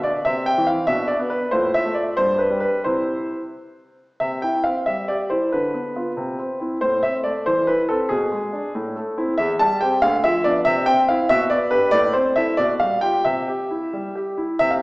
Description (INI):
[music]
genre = classical-period piano sonatina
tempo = 87-96 BPM (dotted quarters)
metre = 6/8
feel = rubato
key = C major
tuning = A4 = 440 Hz
[part]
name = clear concert grand piano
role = solo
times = 0.0-14.8 s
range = D2 to A5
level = -18 LUFS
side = equal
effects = none
[sound]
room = wet recital hall reverb, RT60 1.5 s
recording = recorded in a church or concert hall, small speaker sound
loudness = -18 LUFS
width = side -23 dB against mid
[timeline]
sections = 0.0-4.2 A section; 4.2-14.6 B section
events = none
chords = 0.2 Cadd11; 0.9 Bmadd11; 1.5 F/A; 2.2 G5; 2.8 C; 5.5 Bdim/D; 6.2 C; 6.8 Am; 8.1 G#dim/B; 8.7 Am; 9.4 C/E; 10.0 Bdim/D; 10.7 Cadd11; 11.3 G/B; 11.9 Am; 12.6 G7/B; 13.3 C